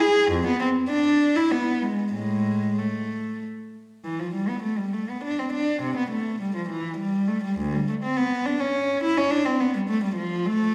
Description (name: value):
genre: classical, baroque-style suite movement for unaccompanied cello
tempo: 92-108 BPM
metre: 3/4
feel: rubato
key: unclear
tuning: A4 = 439 Hz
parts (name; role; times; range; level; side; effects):
- warm cello; solo; 0.0-10.7 s; D2 to G#4; -25 LUFS; equal; none
room: wet recital hall reverb, RT60 1.6 s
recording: recorded in a church or concert hall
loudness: -25 LUFS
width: mono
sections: 0.0-4.0 A section; 4.0-10.7 A section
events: none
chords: none